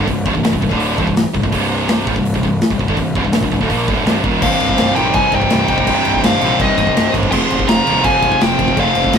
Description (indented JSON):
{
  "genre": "heavy metal",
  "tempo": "166 BPM",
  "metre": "4/4",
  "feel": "straight",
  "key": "C minor",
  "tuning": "A4 = 444 Hz",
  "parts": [
    { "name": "heavy high-gain guitar", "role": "riff", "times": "0.0-9.2 s", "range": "C2 to Bb3", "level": "-21 LUFS", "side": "left 6 dB", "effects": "distortion" },
    { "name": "heavy high-gain guitar", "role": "riff", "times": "0.0-9.2 s", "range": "C2 to Bb3", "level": "-20 LUFS", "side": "right 6 dB", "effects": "distortion" },
    { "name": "fuzz picked electric bass", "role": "bass", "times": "0.0-9.2 s", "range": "C1 to F2", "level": "-21 LUFS", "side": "right 1 dB", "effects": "overdrive" },
    { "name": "big rock drum kit", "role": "drums", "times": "0.1-9.2 s", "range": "crash cymbal, hi-hat, kick drum, snare drum", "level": "-18 LUFS", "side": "equal", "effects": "none" },
    { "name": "high-gain lead guitar", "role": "melody", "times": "4.4-9.2 s", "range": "Eb5 to C6", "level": "-16 LUFS", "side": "left 3 dB", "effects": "distortion" },
    { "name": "high-gain lead guitar", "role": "second line", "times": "4.4-9.2 s", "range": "C4 to Ab4", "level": "-24 LUFS", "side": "right 3 dB", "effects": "distortion" },
    { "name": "warm symphonic string section", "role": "sustained chords", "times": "4.4-9.2 s", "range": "C3 to Ab4", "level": "-29 LUFS", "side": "equal", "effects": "none" },
    { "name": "sludgy distorted guitar", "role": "riff", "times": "4.4-9.2 s", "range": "C2 to F3", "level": "-24 LUFS", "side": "right 2 dB", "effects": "none" }
  ],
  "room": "moderate booth ambience, RT60 0.2 s",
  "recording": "rough rehearsal-room recording",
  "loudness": "-12 LUFS",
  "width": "side -7 dB against mid",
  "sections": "0.0-4.4 A section; 4.4-9.2 B section",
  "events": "none",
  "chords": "0.0 Cm; 7.3 Fm",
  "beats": "| 0.07 0.44 0.80 1.16 | 1.53 1.89 2.25 2.61 | 2.98 3.34 3.70 4.06 | 4.43 4.79 5.15 5.51 | 5.88 6.24 6.60 6.96 | 7.32 7.69 8.05 8.41 | 8.77 9.13"
}